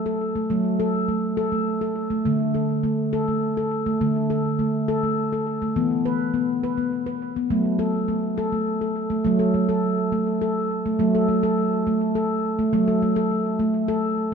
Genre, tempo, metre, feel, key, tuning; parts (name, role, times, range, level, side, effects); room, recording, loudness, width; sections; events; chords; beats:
world meditative, meditative tuned percussion; 69 BPM (dotted quarters); 6/8; straight; F# minor; A4 = 440 Hz
handpan; solo; 0.0-14.3 s; D3 to B4; -20 LUFS; equal; tape echo
wet scoring stage reverb, RT60 2.0 s; dark, warm production; -20 LUFS; side -6 dB against mid
0.0-9.3 A section; 9.3-14.3 B section
0.0 F#m; 2.3 D5; 5.8 E5; 7.5 F#m
| 0.51 1.38 | 2.26 3.13 | 4.01 4.89 | 5.76 6.64 | 7.51 8.38 | 9.26 10.13 | 11.00 11.87 | 12.74 13.61